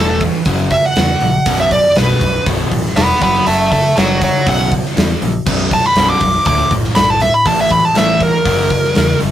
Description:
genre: hard rock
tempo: 120 BPM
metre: 4/4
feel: straight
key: B minor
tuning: A4 = 442 Hz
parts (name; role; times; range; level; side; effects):
- smooth overdriven lead guitar; melody; 0.0-9.2 s; A4 to D6; -13 LUFS; right 1 dB; none
- overdriven semi-hollow guitar; riff; 0.0-9.3 s; B1 to A3; -18 LUFS; equal; none
- modern bright picked electric bass; bass; 0.0-9.3 s; B0 to E2; -20 LUFS; left 1 dB; none
- gated 80s drum kit; drums; 0.2-9.3 s; crash cymbal, hi-hat, kick drum, snare drum; -17 LUFS; equal; none
room: light reverb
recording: rough rehearsal-room recording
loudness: -11 LUFS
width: side -11 dB against mid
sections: 0.0-9.3 A section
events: lead electric guitar solo 0.0-9.3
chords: 0.5 F#; 1.5 B5; 3.2 F#5; 5.5 B5; 6.5 D5; 7.5 A5; 8.5 F#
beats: 0.46 0.96 | 1.46 1.96 2.46 2.96 | 3.46 3.96 4.46 4.96 | 5.46 5.96 6.46 6.96 | 7.46 7.96 8.46 8.96

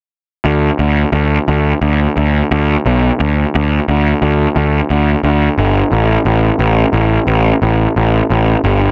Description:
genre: rock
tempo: 88 BPM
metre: 4/4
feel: straight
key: unclear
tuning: A4 = 439 Hz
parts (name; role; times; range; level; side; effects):
- fuzz picked electric bass; bass; 0.4-8.9 s; G1 to D2; -13 LUFS; equal; overdrive
room: little or no reverb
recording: none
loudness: -13 LUFS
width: mono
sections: 0.5-8.9 A section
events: none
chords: none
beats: | 0.46 1.14 1.82 2.51 | 3.19 3.87 4.55 5.23 | 5.92 6.60 7.28 7.96 | 8.63

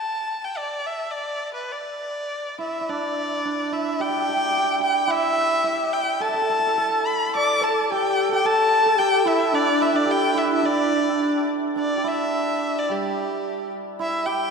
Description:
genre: chinese traditional, Chinese chamber ensemble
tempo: 100-112 BPM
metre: 2/4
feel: rubato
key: unclear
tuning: A4 = 440 Hz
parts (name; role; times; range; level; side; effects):
- rich erhu; melody; 0.0-14.5 s; G4 to D6; -23 LUFS; left 2 dB; none
- hammered dulcimer; second line; 2.6-14.5 s; G3 to D5; -24 LUFS; right 5 dB; none
- breathy bright xiao; second line; 7.4-11.5 s; D4 to D5; -26 LUFS; left 6 dB; none
room: wet cathedral reverb, RT60 4.5 s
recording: recorded in a church or concert hall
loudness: -20 LUFS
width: side -5 dB against mid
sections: 0.0-2.9 A section; 2.9-11.8 B section; 11.8-14.5 A section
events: none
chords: none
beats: | 0.55 1.12 | 1.70 2.29 | 2.88 3.45 | 4.00 4.55 | 5.10 5.65 | 6.21 6.78 | 7.35 7.91 | 8.45 8.99 | 9.53 10.08 | 10.63 11.19 | 11.76 12.34 | 12.90 13.44 | 13.98

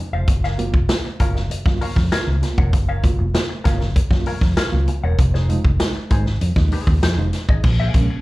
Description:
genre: funk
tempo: 98 BPM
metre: 4/4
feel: straight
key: unclear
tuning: A4 = 440 Hz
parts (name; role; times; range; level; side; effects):
- vintage hollow-body jazz guitar; accompaniment; 0.0-8.1 s; Eb4 to Gb5; -30 LUFS; left 4 dB; wah, slapback echo
- reed electric piano; stabs; 0.1-8.2 s; Bb2 to F4; -28 LUFS; right 3 dB; fast tremolo, slapback echo
- vintage muted fingered electric bass; bass; 0.1-8.1 s; E1 to Gb2; -19 LUFS; equal; none
- vintage drum kit; drums; 0.3-8.1 s; crash cymbal, hi-hat, kick drum, snare drum; -19 LUFS; equal; none
- congas; percussion; 0.4-8.1 s; none; -31 LUFS; right 2 dB; none
room: little or no reverb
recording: live gig heard through the venue's PA, club reverb, vinyl crackle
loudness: -16 LUFS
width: side -19 dB against mid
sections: 0.0-7.6 A section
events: none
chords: 0.3 Gbmaj7; 5.2 Fm7; 7.6 Bbm7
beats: | 0.28 0.89 1.50 2.12 | 2.73 3.35 3.96 4.57 | 5.18 5.80 6.41 7.02 | 7.64

